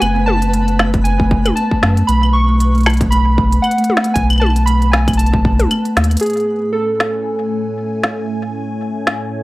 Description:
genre	IDM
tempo	116 BPM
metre	4/4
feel	swing 56% on 16ths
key	A major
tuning	A4 = 440 Hz
part	warbly lo-fi synth keys	melody	0.0-8.0 s	G#4 to C#6	-19 LUFS	right 2 dB	chorus, tape echo
part	warm sub bass	bass	0.0-6.2 s	F#1 to F#2	-14 LUFS	equal	none
part	organic electronic drum kit	drums	0.0-9.2 s	claves, hi-hat, snare drum, toms	-18 LUFS	left 1 dB	overdrive, studio reverb
part	twinkling granular texture	texture	0.0-6.2 s	B3 to B4	-29 LUFS	equal	built-in reverb
part	kalimba	arpeggios	0.2-6.1 s	A3	-20 LUFS	equal	analog delay
part	electronic kick drum	drums	0.9-5.6 s	none	-18 LUFS	equal	distortion, studio reverb
part	phased analog pad	sustained chords	6.2-9.4 s	A2 to G#5	-22 LUFS	left 1 dB	phaser, chorus, sidechain pumping
room	little or no reverb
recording	dry, gritty hardware recording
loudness	-13 LUFS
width	side -18 dB against mid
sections	0.0-6.2 A section; 6.2-9.4 B section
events	drum fill 6.0; band accent 6.0; filter sweep on analog synth pad 6.2-9.4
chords	0.0 F#m; 2.1 B7(no3); 6.2 Amaj7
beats	| 0.02 0.54 1.05 1.57 | 2.09 2.60 3.12 3.64 | 4.16 4.67 5.19 5.71 | 6.22 6.74 7.26 7.78 | 8.29 8.81 9.33

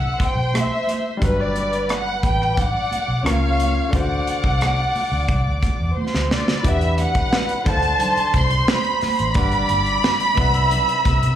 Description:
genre	lush 1970s-style soul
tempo	88 BPM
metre	4/4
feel	straight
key	G major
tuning	A4 = 436 Hz
part	warm symphonic violin section	melody	0.0-11.4 s	B4 to C6	-21 LUFS	right 1 dB	slapback echo
part	dark studio string section	second line	0.0-11.4 s	B4 to E6	-28 LUFS	equal	slapback echo
part	warm baby grand piano	accompaniment	0.0-11.4 s	C3 to F#5	-28 LUFS	left 3 dB	slapback echo
part	vintage muted fingered electric bass	bass	0.0-11.4 s	G1 to D3	-22 LUFS	equal	none
part	modern studio drum kit	drums	0.2-11.4 s	hi-hat, kick drum, rim click, snare drum	-23 LUFS	equal	none
part	congas	percussion	0.2-11.2 s	none	-31 LUFS	right 4 dB	slapback echo
room	light reverb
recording	live gig heard through the venue's PA, club reverb, vinyl crackle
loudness	-17 LUFS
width	side -10 dB against mid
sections	0.0-6.6 A section; 6.6-11.4 B section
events	drum fill 6.0-6.6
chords	0.0 C6; 1.2 Gmaj7; 3.3 C#6; 3.9 D7; 6.6 Em9; 7.7 D7; 9.4 Gmaj7; 10.4 Cmaj9#11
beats	0.54 | 1.22 1.89 2.57 3.25 | 3.93 4.61 5.29 5.97 | 6.65 7.33 8.01 8.68 | 9.36 10.04 10.72

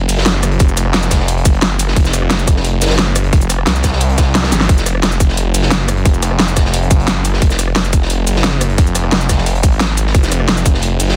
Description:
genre	dark technical drum and bass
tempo	176 BPM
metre	4/4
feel	straight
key	F phrygian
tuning	A4 = 443 Hz
part	snarling distorted saw bass	bass	0.0-11.2 s	F1 to C2	-18 LUFS	equal	distortion, overdrive
part	crunchy breakbeat drum kit	drums	0.1-11.2 s	hi-hat, snare drum	-26 LUFS	equal	high-pass filter on hats, high-pass filter on snare, high-pass filter on room
part	dubstep drum kit	drums	0.1-11.1 s	cabasa, hi-hat, rim click, snare drum	-19 LUFS	equal	none
part	electronic kick drum	drums	0.6-10.7 s	none	-14 LUFS	equal	none
room	little or no reverb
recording	dense, heavily limited modern master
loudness	-14 LUFS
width	mono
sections	0.0-11.2 A section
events	drum fill 4.4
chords	none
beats	0.26 | 0.60 0.94 1.28 1.62 | 1.96 2.31 2.65 2.99 | 3.33 3.67 4.01 4.35 | 4.69 5.03 5.37 5.71 | 6.05 6.40 6.74 7.08 | 7.42 7.76 8.10 8.44 | 8.78 9.12 9.46 9.80 | 10.15 10.49 10.83

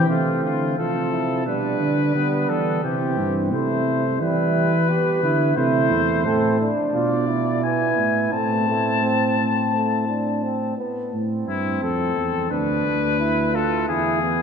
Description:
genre	classical, imitative canzona for brass ensemble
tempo	87 BPM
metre	4/4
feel	straight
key	F major, A minor from 5.6 s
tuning	A4 = 440 Hz
part	clear trumpet	melody	0.0-14.4 s	E4 to A5	-24 LUFS	left 7 dB	none
part	mellow flugelhorn	second line	0.0-14.4 s	B3 to A4	-25 LUFS	right 4 dB	none
part	clear trombone	accompaniment	0.0-11.1 s	E3 to D4	-26 LUFS	right 2 dB	none
part	dark tuba	bass	0.0-14.4 s	D2 to E3	-23 LUFS	right 1 dB	none
room	wet church reverb, RT60 3.6 s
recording	dark, warm production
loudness	-19 LUFS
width	side -6 dB against mid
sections	0.1-11.1 A section; 11.1-14.4 B section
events	none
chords	0.1 F/C; 1.5 G/B; 2.8 C; 4.2 Em; 5.6 Am; 6.9 Bdim; 7.6 E/B; 8.3 Am; 12.5 Bdim/D; 13.9 E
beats	| 0.09 0.78 1.47 2.15 | 2.85 3.53 4.21 4.89 | 5.57 6.26 6.95 7.63 | 8.33 9.03 9.73 10.43 | 11.12 11.82 12.51 13.20 | 13.88

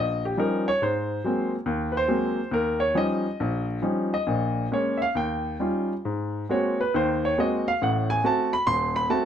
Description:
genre	solo jazz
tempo	138 BPM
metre	4/4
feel	swing 66% on 8ths, rubato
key	Eb mixolydian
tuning	A4 = 440 Hz
part	clear baby grand piano	solo	0.0-9.2 s	Eb1 to C6	-23 LUFS	equal	none
room	light reverb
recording	dark, warm production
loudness	-23 LUFS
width	side -9 dB against mid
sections	0.0-9.2 A section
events	grand piano solo 0.0-9.2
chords	0.0 Eb9; 0.8 Ab9; 2.5 Eb9; 4.3 Bbm7; 5.2 Eb9; 6.1 Ab9; 7.8 Adim7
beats	0.38 | 0.82 1.25 1.67 2.10 | 2.52 2.96 3.39 3.83 | 4.27 4.71 5.15 5.61 | 6.06 6.50 6.94 7.38 | 7.82 8.24 8.67 9.09

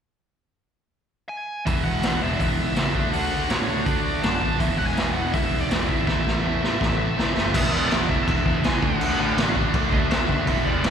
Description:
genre	punk rock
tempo	164 BPM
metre	4/4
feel	straight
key	E mixolydian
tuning	A4 = 441 Hz
part	bluesy overdriven lead guitar	melody	1.3-10.9 s	C#5 to A5	-30 LUFS	equal	distortion, slapback echo, digital delay
part	distorted electric guitar	riff	1.7-10.9 s	E2 to D4	-27 LUFS	right 11 dB	overdrive, slapback echo
part	overdriven electric guitar	riff	1.7-10.9 s	A2 to F#4	-29 LUFS	left 10 dB	none
part	fuzz picked electric bass	bass	1.7-10.9 s	E1 to A2	-28 LUFS	equal	overdrive
part	raw garage drum kit	drums	1.7-10.9 s	crash cymbal, hi-hat, kick drum, snare drum	-24 LUFS	equal	none
part	fuzz guitar	riff	7.5-10.9 s	E2 to D4	-29 LUFS	left 1 dB	distortion, slapback echo
room	studio reverb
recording	live gig heard through the venue's PA, recital hall reverb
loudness	-20 LUFS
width	side -8 dB against mid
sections	0.2-1.7 A section; 1.7-7.5 B section; 7.5-10.9 C section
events	drum fill 6.1-7.5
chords	0.2 N.C.; 1.7 E; 2.9 D; 4.6 E; 6.1 A; 7.5 E; 8.8 D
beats	| 0.20 0.57 0.94 1.30 | 1.67 2.03 2.40 2.77 | 3.13 3.50 3.87 4.23 | 4.60 4.97 5.34 5.71 | 6.07 6.44 6.81 7.17 | 7.54 7.91 8.28 8.64 | 9.01 9.37 9.74 10.11 | 10.47 10.84

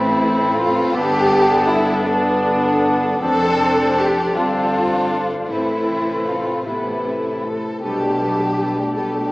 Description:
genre	cinematic, emotional film score for orchestra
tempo	52 BPM (dotted quarters)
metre	6/8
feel	rubato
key	A minor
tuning	A4 = 441 Hz
part	rich studio violin section	melody	0.0-9.3 s	B4 to D5	-29 LUFS	equal	none
part	mellow hollow silver concert flute	second line	0.0-9.3 s	A5 to B5	-22 LUFS	equal	none
part	rich studio violin section	second line	0.0-9.3 s	D4 to A4	-21 LUFS	equal	none
part	warm clarinet	second line	0.0-9.3 s	B3 to E4	-24 LUFS	equal	none
part	rich studio viola section	accompaniment	0.0-9.3 s	C3 to A4	-24 LUFS	equal	none
part	concert harp	arpeggios	0.0-9.3 s	F2 to D5	-29 LUFS	left 2 dB	none
part	rich studio double bass section	bass	0.0-9.3 s	F1 to B1	-30 LUFS	right 1 dB	none
part	warm studio cello section	bass	0.0-9.3 s	F2 to B2	-29 LUFS	equal	none
room	moderate scoring stage reverb, RT60 1.6 s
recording	worn, warbling old tape, cassette tape, warbly pitch drift, small speaker sound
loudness	-16 LUFS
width	side -21 dB against mid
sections	0.0-9.3 A section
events	none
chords	0.0 Amadd9; 0.9 Gadd9; 3.2 Dm7/F; 5.5 Amadd9; 7.8 Gadd9/B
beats	| 0.95 2.06 | 3.21 4.35 | 5.50 6.67 | 7.83 8.96

